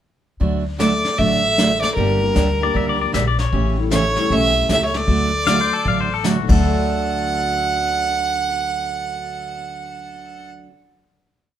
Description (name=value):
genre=country, western swing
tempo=155 BPM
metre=4/4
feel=swing 64% on 8ths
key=D major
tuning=A4 = 439 Hz
part: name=picked steel-string acoustic guitar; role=accompaniment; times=0.4-10.7 s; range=C#3 to G4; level=-23 LUFS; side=right 3 dB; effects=none
part: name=upright bass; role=bass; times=0.4-10.6 s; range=G1 to D2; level=-23 LUFS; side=left 1 dB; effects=none
part: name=vintage brush drum kit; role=drums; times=0.4-6.6 s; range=brushed snare drum, crash cymbal, hi-hat, kick drum, snare drum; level=-24 LUFS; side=left 1 dB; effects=none
part: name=clear fiddle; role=melody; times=0.8-10.5 s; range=Bb4 to F#5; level=-20 LUFS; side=right 2 dB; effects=none
part: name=hollow-body jazz guitar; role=second line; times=0.8-10.6 s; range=G3 to D4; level=-27 LUFS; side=left 1 dB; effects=none
part: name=warm upright piano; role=accompaniment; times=1.2-10.8 s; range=D2 to A4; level=-30 LUFS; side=left 7 dB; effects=none
part: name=pedal steel guitar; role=second line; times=2.6-10.5 s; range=F#4 to F5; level=-24 LUFS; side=left 9 dB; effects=none
room=moderate large studio reverb, RT60 1.3 s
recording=band playing live in one room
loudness=-16 LUFS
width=side -10 dB against mid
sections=0.4-6.6 A section; 6.6-9.7 final hit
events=none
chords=0.4 D; 2.0 Gm; 3.5 A7; 5.1 D